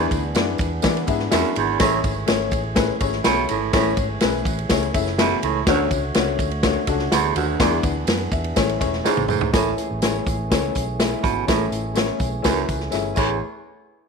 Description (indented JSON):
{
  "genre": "uptempo 1960s-style soul",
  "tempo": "124 BPM",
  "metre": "4/4",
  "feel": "straight",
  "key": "A major",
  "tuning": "A4 = 438 Hz",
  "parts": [
    { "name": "clear upright piano", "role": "accompaniment", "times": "0.0-13.4 s", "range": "A3 to F#5", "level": "-24 LUFS", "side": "left 11 dB", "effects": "tube saturation" },
    { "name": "percussive tonewheel organ", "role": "sustained chords", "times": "0.0-13.4 s", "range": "D3 to C#5", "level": "-30 LUFS", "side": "right 2 dB", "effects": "overdrive, stopped rotary speaker" },
    { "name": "raspy baritone saxophone", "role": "riff", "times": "0.0-13.4 s", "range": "D2 to B2", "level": "-23 LUFS", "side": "right 12 dB", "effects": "none" },
    { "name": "vintage muted fingered electric bass", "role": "bass", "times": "0.0-13.4 s", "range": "E1 to E3", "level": "-28 LUFS", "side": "right 1 dB", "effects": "none" },
    { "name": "natural country drum kit", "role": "drums", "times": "0.1-13.3 s", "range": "crash cymbal, hi-hat, kick drum, ride cymbal, snare drum, toms", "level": "-22 LUFS", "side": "equal", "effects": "none" },
    { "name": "tambourine", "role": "percussion", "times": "0.1-13.4 s", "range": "none", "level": "-36 LUFS", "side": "right 15 dB", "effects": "none" }
  ],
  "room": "moderate plate reverb, RT60 1.3 s, small room ambience",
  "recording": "1960s-style stereo with parts hard left and right",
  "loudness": "-18 LUFS",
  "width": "side -5 dB against mid",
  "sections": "0.0-9.5 A section; 9.5-13.4 B section",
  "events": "drum fill 9.1-9.5, 12.9-13.4",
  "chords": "0.0 E7; 1.8 Amaj7; 5.7 Dmaj7; 7.6 E7; 8.6 Amaj7; 13.4 N.C.",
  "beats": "0.35 0.84 1.32 | 1.80 2.29 2.77 3.25 | 3.74 4.22 4.70 5.19 | 5.67 6.15 6.64 7.12 | 7.61 8.09 8.57 9.06 | 9.54 10.02 10.51 10.99 | 11.48 11.96 12.45 12.93"
}